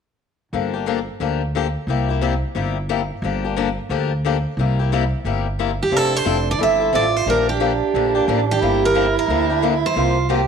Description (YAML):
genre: acoustic string swing (jazz manouche)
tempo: 178 BPM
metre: 4/4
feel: swing 61% on 8ths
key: unclear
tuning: A4 = 440 Hz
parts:
  - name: picked swing-style acoustic guitar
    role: accompaniment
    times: 0.5-10.4 s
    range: C3 to A4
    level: -22 LUFS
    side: left 10 dB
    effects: none
  - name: upright bass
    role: bass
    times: 0.5-10.5 s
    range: F1 to D2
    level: -23 LUFS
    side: equal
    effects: none
  - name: picked steel-string acoustic guitar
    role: melody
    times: 5.8-10.5 s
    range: G4 to E5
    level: -19 LUFS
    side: right 3 dB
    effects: slapback echo
  - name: breathy soprano saxophone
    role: second line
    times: 5.9-10.5 s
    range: D4 to G4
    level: -22 LUFS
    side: right 10 dB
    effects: slapback echo
room: moderate echo chamber reverb, RT60 1.4 s, studio ambience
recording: 1960s-style stereo with parts hard left and right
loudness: -17 LUFS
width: side -6 dB against mid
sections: 0.5-5.9 A section; 5.9-10.5 B section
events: none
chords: 0.5 Gm7; 1.9 C7; 3.2 Gm7; 4.6 C7; 5.9 Fmaj7; 7.3 Bb6; 8.6 Gm7; 9.9 C7sus4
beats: | 0.53 0.87 1.21 1.54 | 1.88 2.22 2.56 2.89 | 3.23 3.56 3.90 4.24 | 4.58 4.91 5.25 5.58 | 5.92 6.26 6.59 6.93 | 7.27 7.60 7.94 8.27 | 8.61 8.94 9.28 9.62 | 9.95 10.29